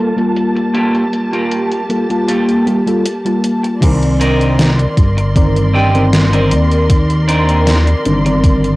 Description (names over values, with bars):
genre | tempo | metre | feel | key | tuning
vaporwave | 78 BPM | 4/4 | straight | C dorian | A4 = 441 Hz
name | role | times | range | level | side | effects
mellow FM electric piano | accompaniment | 0.0-8.8 s | Eb3 to A5 | -15 LUFS | equal | analog chorus, cassette tape, analog delay
muted studio string section | sustained chords | 0.0-8.8 s | G3 to C6 | -21 LUFS | right 1 dB | low-pass filter, cassette tape
clean electric guitar | riff | 0.2-8.5 s | Bb3 to Bb4 | -18 LUFS | right 1 dB | lush chorus, cassette tape, analog delay
gated 80s digital drum machine | drums | 0.2-8.8 s | crash cymbal, hi-hat, snare drum | -19 LUFS | equal | gated reverb, gated reverb snare, overdrive, cassette tape
chorused synth bass | bass | 3.8-8.8 s | G1 to Eb2 | -14 LUFS | equal | none
electronic kick drum | drums | 3.8-8.6 s | none | -11 LUFS | equal | overdrive, cassette tape
room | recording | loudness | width
light reverb | home recording on cassette, low-pass filter | -11 LUFS | side -19 dB against mid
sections
0.0-3.8 A section; 3.8-8.8 B section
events
none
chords
0.0 Gm9; 3.8 Cm9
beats
| 0.75 1.52 2.29 3.05 | 3.82 4.59 5.36 6.13 | 6.90 7.67 8.44